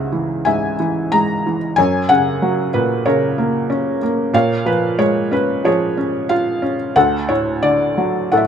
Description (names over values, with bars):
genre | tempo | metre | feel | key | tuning
classical, lyrical solo piano | 92 BPM | 4/4 | rubato | unclear | A4 = 439 Hz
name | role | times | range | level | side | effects
felt-muted upright piano | solo | 0.0-8.5 s | C#2 to A#5 | -15 LUFS | equal | none
room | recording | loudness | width
light reverb | none | -15 LUFS | side -8 dB against mid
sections
0.0-8.5 A section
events
none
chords
0.0 C#m; 1.8 F#; 4.3 A#m7; 7.0 D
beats
0.46 1.12 | 1.78 2.42 3.06 3.70 | 4.34 4.99 5.65 6.30 | 6.96 7.63 8.32